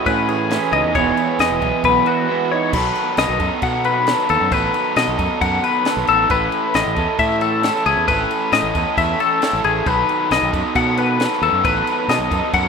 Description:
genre	math rock and midwest emo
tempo	135 BPM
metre	4/4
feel	straight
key	unclear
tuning	A4 = 440 Hz
part	electric guitar through a small old amp	accompaniment	0.0-2.7 s	E2 to G#4	-20 LUFS	right 10 dB	wide subtle chorus, plate reverb
part	twelve-string electric guitar	arpeggios	0.0-12.7 s	F#4 to F#5	-18 LUFS	left 8 dB	spring reverb, plate reverb
part	overdriven electric guitar	riff	0.0-12.7 s	A2 to A4	-22 LUFS	right 5 dB	none
part	growling fingered electric bass	bass	0.1-12.7 s	E1 to B2	-24 LUFS	right 1 dB	overdrive
part	compact cocktail drum kit	drums	0.1-12.6 s	crash cymbal, kick drum, snare drum	-26 LUFS	right 1 dB	none
room	moderate small room reverb, RT60 0.5 s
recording	rough home demo mix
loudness	-15 LUFS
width	side -6 dB against mid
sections	0.0-2.7 A section; 2.7-12.7 B section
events	break 2.3-2.7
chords	0.0 Amaj9#11; 1.0 Emaj9; 2.7 B7; 6.3 Amaj9#11; 9.9 B7

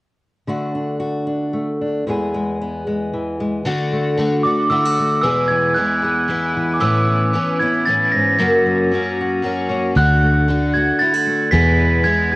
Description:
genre	folk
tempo	114 BPM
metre	3/4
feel	straight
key	unclear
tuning	A4 = 440 Hz
part	fingerpicked steel-string acoustic guitar	accompaniment	0.5-12.4 s	E2 to G#4	-22 LUFS	left 1 dB	none
part	picked twelve-string acoustic guitar	accompaniment	3.7-12.4 s	E2 to F#4	-20 LUFS	left 1 dB	none
part	glockenspiel with rubber mallets	melody	4.4-12.4 s	D6 to B6	-18 LUFS	right 2 dB	cassette tape
part	fingered electric bass	bass	10.0-12.4 s	D2 to E2	-16 LUFS	equal	none
room	moderate spring reverb, RT60 1.3 s, small room ambience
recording	home recording on cassette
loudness	-15 LUFS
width	side -19 dB against mid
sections	0.5-3.6 A section; 3.6-12.4 B section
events	none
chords	0.5 D; 2.1 E; 3.6 D; 5.2 E; 6.8 Aadd9; 8.4 F#; 10.0 D; 11.5 E

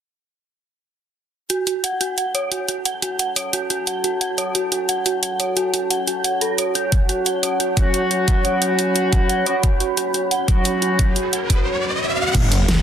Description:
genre	dark technical drum and bass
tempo	177 BPM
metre	4/4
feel	straight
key	F# minor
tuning	A4 = 442 Hz
part	deep dark ambient pad	sustained chords	3.0-12.8 s	F#4 to B5	-24 LUFS	equal	chorus, built-in reverb, sidechain pumping
part	dark detuned synth bell	arpeggios	1.5-11.5 s	F#4 to F#5	-24 LUFS	right 2 dB	chorus, phaser, sidechain pumping, low-pass filter, digital delay
part	dubstep drum kit	drums	1.5-12.8 s	crash cymbal, hi-hat, snare drum	-21 LUFS	right 2 dB	overdrive
part	electronic kick drum	drums	6.9-12.4 s	none	-18 LUFS	equal	overdrive
part	mellow brass ensemble	stabs	7.8-11.1 s	F#3 to F#4	-22 LUFS	left 2 dB	digital delay
part	riser and sub drop	sound effects	10.9-12.8 s	none	-24 LUFS	equal	none
part	snarling distorted saw bass	bass	12.3-12.8 s	F#1	-18 LUFS	equal	overdrive, sidechain pumping
part	crunchy breakbeat drum kit	drums	12.3-12.8 s	hi-hat, snare drum	-32 LUFS	equal	none
room	light reverb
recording	dense, heavily limited modern master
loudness	-17 LUFS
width	side -9 dB against mid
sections	1.5-12.3 A section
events	riser 10.9-12.3; impact 12.3-12.8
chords	1.5 F#m

